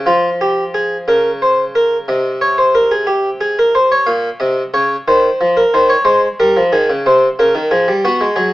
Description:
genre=classical, baroque-style two-part invention for harpsichord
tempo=60 BPM (dotted quarters)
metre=12/8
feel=straight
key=unclear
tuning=A4 = 438 Hz
part: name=harpsichord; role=solo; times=0.0-8.5 s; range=Bb2 to F5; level=-11 LUFS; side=equal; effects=none
room=moderate stone room reverb, RT60 1.1 s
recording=AM radio sound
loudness=-11 LUFS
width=side -16 dB against mid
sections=0.1-8.5 A section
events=none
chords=0.1 Db/F; 2.1 N.C.; 4.1 Bbm; 6.1 Ab

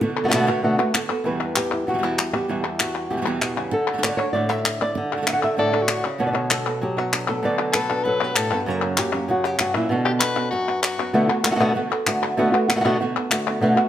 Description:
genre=flamenco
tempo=194 BPM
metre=4/4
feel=straight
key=B minor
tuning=A4 = 440 Hz
part: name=flamenco guitar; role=melody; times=0.0-13.9 s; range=E2 to F#5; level=-22 LUFS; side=equal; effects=slapback echo, plate reverb
part: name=flamenco guitar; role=stabs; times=0.0-13.9 s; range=E2 to F#4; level=-27 LUFS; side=right 4 dB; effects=none
part: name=palmas hand claps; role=percussion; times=0.2-13.9 s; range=none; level=-24 LUFS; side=left 4 dB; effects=none
part: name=edgy soprano saxophone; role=second line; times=5.6-11.1 s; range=F#4 to B4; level=-25 LUFS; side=left 4 dB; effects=none
room=moderate stone room reverb, RT60 1.0 s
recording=none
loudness=-19 LUFS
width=side -11 dB against mid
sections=0.0-1.2 A section; 1.2-11.1 B section; 11.1-13.9 A section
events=none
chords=0.0 Bm7; 1.2 Emadd9; 3.7 D; 6.2 Bm7; 8.7 F#; 9.9 Bmadd9; 11.1 Bm7

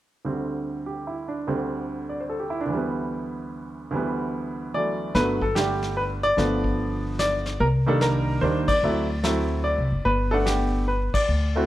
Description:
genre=jazz piano trio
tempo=147 BPM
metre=3/4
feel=swing 65% on 8ths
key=G major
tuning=A4 = 440 Hz
part: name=clear baby grand piano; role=melody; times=0.2-11.7 s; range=D2 to F#5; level=-24 LUFS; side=right 1 dB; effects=none
part: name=upright bass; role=bass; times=5.1-11.7 s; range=F#1 to Eb2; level=-25 LUFS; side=equal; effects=none
part: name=vintage brush drum kit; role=drums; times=5.1-11.7 s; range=brushed snare drum, hi-hat, kick drum, ride cymbal, snare drum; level=-30 LUFS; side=left 1 dB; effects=none
room=moderate large studio reverb, RT60 0.9 s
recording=none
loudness=-22 LUFS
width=side -14 dB against mid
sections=0.2-5.1 A section; 5.1-11.7 B section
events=band accent 8.6, 11.1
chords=0.2 D7sus4; 2.7 G6/D; 5.1 Gadd9; 7.6 Cm9; 8.8 D7; 10.1 Gmaj9

